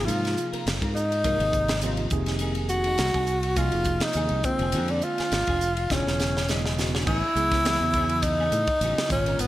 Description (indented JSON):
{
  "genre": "electric jazz fusion",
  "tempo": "103 BPM",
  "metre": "4/4",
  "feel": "swing 54% on 16ths",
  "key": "unclear",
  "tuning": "A4 = 440 Hz",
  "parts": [
    { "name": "clear tenor saxophone", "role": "melody", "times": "0.0-9.5 s", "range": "G#3 to Gb4", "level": "-26 LUFS", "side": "equal", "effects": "none" },
    { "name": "tine electric piano", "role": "accompaniment", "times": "0.0-9.5 s", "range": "A#2 to Bb4", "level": "-32 LUFS", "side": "right 1 dB", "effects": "fast stereo tremolo, lush chorus" },
    { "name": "clean electric guitar", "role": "stabs", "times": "0.0-9.4 s", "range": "E3 to Bb4", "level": "-37 LUFS", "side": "left 1 dB", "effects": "ensemble chorus" },
    { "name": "fingered electric bass", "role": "bass", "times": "0.0-9.5 s", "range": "E1 to A2", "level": "-28 LUFS", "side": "equal", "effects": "none" },
    { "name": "tight funk drum kit", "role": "drums", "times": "0.1-9.5 s", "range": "crash cymbal, hi-hat, kick drum, ride cymbal, snare drum", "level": "-29 LUFS", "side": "equal", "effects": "gated reverb" }
  ],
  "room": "moderate lush hall reverb, RT60 1.6 s, small room ambience",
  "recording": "bright 1980s-style digital production",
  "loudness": "-22 LUFS",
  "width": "side -15 dB against mid",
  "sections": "0.0-7.1 A section; 7.1-9.5 B section",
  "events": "drum fill 5.9-7.1",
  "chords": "0.0 Ab13; 2.1 Fm7; 4.4 Bb9/F; 5.9 E13; 7.1 Amaj9"
}